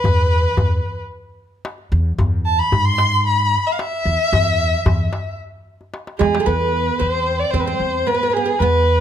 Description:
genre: Arabic maqam ensemble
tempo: 112 BPM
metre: 4/4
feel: straight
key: E maqam hijaz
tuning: A4 = 438 Hz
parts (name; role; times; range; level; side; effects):
- warm violin; melody; 0.0-9.0 s; G#4-23c to C6; -19 LUFS; left 1 dB; slapback echo
- upright bass; bass; 0.0-9.0 s; E2 to G#2; -19 LUFS; equal; none
- darbuka; percussion; 0.0-6.5 s; none; -21 LUFS; left 2 dB; none
- oud; second line; 6.2-9.0 s; G#3 to C4; -21 LUFS; right 6 dB; none
room: little or no reverb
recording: close, detailed microphones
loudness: -16 LUFS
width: side -10 dB against mid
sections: 0.0-6.5 A section; 6.5-9.0 B section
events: drum fill 5.9-6.5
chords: none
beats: | 0.04 0.58 1.11 1.65 | 2.19 2.72 3.26 3.79 | 4.33 4.86 5.40 5.93 | 6.47 7.01 7.54 8.08 | 8.61

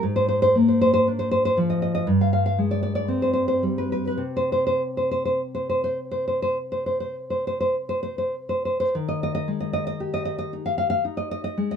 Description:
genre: romantic piece for solo classical guitar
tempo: 49-60 BPM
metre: 4/4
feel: rubato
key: unclear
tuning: A4 = 436 Hz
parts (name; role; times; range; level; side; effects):
- nylon-string guitar; solo; 0.0-11.8 s; G2 to F5; -21 LUFS; equal; none
room: moderate studio ambience, RT60 0.5 s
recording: minimal, uncompressed stereo recording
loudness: -21 LUFS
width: side -7 dB against mid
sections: 0.0-8.9 A section; 8.9-11.8 B section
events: none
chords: 0.0 Fm/Ab; 2.1 G7b9; 4.2 N.C.; 8.9 Eb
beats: | 0.03 1.05 2.07 3.09 | 4.22 5.41 6.57 7.75 | 8.93 10.01 11.04

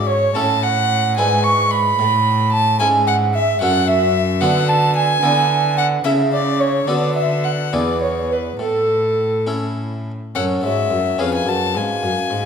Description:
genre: classical, baroque-style sonata movement with continuo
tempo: 67-75 BPM (dotted quarters)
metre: 6/8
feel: rubato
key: A major from 3.6 s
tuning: A4 = 440 Hz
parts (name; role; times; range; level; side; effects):
- warm violin; melody; 0.0-12.5 s; A4 to C#6; -22 LUFS; left 8 dB; none
- harpsichord; accompaniment; 0.0-12.5 s; E2 to B4; -23 LUFS; left 2 dB; none
- rich cello; bass; 0.0-12.5 s; E2 to D3; -22 LUFS; equal; none
- mellow baroque flute; second line; 0.1-12.5 s; A4 to C#6; -19 LUFS; right 6 dB; none
room: wet recital hall reverb, RT60 1.6 s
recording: none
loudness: -15 LUFS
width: side -6 dB against mid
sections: 0.0-10.4 A section; 10.4-12.5 A section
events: none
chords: 0.3 A; 1.2 E7/G#; 2.0 A; 3.6 F#m; 4.4 Bm7/D; 5.2 E7/D; 6.0 A/C#; 6.9 Bm7/D; 7.7 E; 8.6 A; 10.4 F#m; 11.2 C#7/E#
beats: | 0.35 1.17 | 1.99 2.80 | 3.61 4.42 | 5.22 6.04 | 6.87 7.73 | 8.60 9.48 | 10.36 11.20 | 12.04

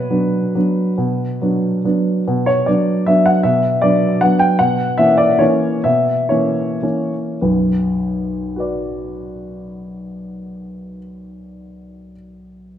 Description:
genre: classical, piano waltz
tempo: 94-167 BPM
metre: 3/4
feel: rubato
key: B minor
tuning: A4 = 440 Hz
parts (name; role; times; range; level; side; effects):
- warm grand piano; solo; 0.0-12.8 s; B1 to G5; -15 LUFS; equal; none
room: wet recital hall reverb, RT60 1.6 s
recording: dark, warm production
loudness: -14 LUFS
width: side -10 dB against mid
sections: 0.0-2.3 A section; 2.3-7.4 B section; 7.4-10.8 C section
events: slowing down 4.0-7.4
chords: 0.0 Bm; 4.6 F#7/B; 7.4 Bm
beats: 0.10 0.55 | 0.99 1.42 1.85 | 2.27 2.68 3.08 | 3.45 3.83 4.22 | 4.60 4.98 5.40 | 5.85 6.31 6.83 | 7.43 8.00 8.57 | 9.13 9.69 10.25

